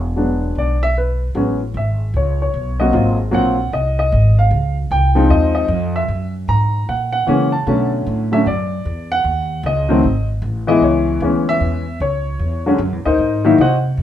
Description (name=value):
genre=jazz piano trio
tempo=152 BPM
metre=4/4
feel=swing 64% on 8ths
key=unclear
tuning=A4 = 443 Hz
part: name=upright bass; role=bass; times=0.0-14.0 s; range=E1 to C#3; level=-18 LUFS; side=equal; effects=none
part: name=warm baby grand piano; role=melody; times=0.2-13.8 s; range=D3 to A#5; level=-16 LUFS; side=left 1 dB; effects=none
room=moderate large studio reverb, RT60 0.8 s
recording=minimal, uncompressed stereo recording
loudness=-14 LUFS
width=side -11 dB against mid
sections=0.0-1.3 A section; 1.3-14.0 B section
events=none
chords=0.0 E9; 1.3 Amaj13; 2.9 G#13; 4.5 C#maj9; 6.1 F#7; 7.7 Bm9; 9.2 D#m7; 10.0 Eadd11/G#; 10.8 C#m7; 12.4 E7sus2; 13.2 G#9